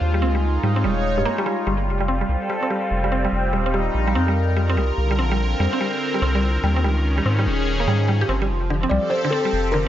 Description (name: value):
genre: IDM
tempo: 145 BPM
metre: 4/4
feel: swing 62% on 16ths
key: G minor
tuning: A4 = 440 Hz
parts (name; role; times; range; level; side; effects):
- phased analog pad; sustained chords; 0.0-9.9 s; D3 to Db5; -24 LUFS; equal; phaser, chorus
- round analog bass; bass; 0.0-9.9 s; Eb1 to Ab2; -21 LUFS; equal; tube saturation
- mallet-like synth pluck; arpeggios; 0.1-9.8 s; G2 to G4; -25 LUFS; right 1 dB; chorus, phaser, tape echo
- felt-muted upright piano; melody; 8.9-9.8 s; A4 to D5; -21 LUFS; left 2 dB; analog delay
room: moderate spring reverb, RT60 1.2 s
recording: echo-heavy mix, nothing above 7.6 kHz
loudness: -18 LUFS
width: side -12 dB against mid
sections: 0.0-1.7 A section; 1.7-9.9 B section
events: none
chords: 0.0 Eb9sus4; 1.7 G9sus4; 3.1 F9sus4; 5.0 C9sus4; 6.6 Eb9sus4; 8.3 G9sus4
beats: | 0.01 0.43 0.84 1.25 | 1.67 2.08 2.50 2.91 | 3.32 3.74 4.15 4.57 | 4.98 5.39 5.81 6.22 | 6.63 7.05 7.46 7.88 | 8.29 8.70 9.12 9.53